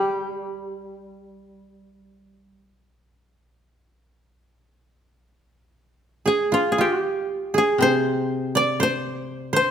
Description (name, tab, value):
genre	japanese traditional, Japanese chamber music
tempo	55-64 BPM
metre	4/4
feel	rubato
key	G in sen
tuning	A4 = 439 Hz
part	koto	melody	0.0-9.7 s	F4 to D5	-23 LUFS	left 1 dB	none
part	koto	second line	0.0-9.7 s	F4 to D5	-24 LUFS	right 3 dB	none
part	koto	accompaniment	0.0-9.7 s	C3 to G3	-27 LUFS	left 3 dB	none
room	moderate recital hall reverb, RT60 1.6 s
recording	faint mains hum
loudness	-20 LUFS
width	side -8 dB against mid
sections	0.0-5.7 A section; 5.7-9.7 B section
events	none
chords	none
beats	0.70 | 1.66 2.63 3.63 4.67 | 5.74 6.78 7.80 8.80